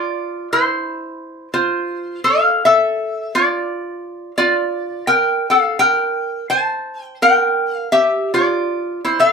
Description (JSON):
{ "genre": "hawaiian", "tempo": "84 BPM", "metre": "4/4", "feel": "swing 59% on 8ths", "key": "F major", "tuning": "A4 = 439 Hz", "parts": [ { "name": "lap resonator guitar", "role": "solo", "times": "0.0-9.3 s", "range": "E4 to A5", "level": "-15 LUFS", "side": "equal", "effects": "none" } ], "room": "wet small room reverb, RT60 0.5 s", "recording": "band playing live in one room", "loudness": "-15 LUFS", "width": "side -5 dB against mid", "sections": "0.1-9.3 A section", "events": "none", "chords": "0.1 F; 2.9 Bbmaj7; 5.8 C5; 8.6 F" }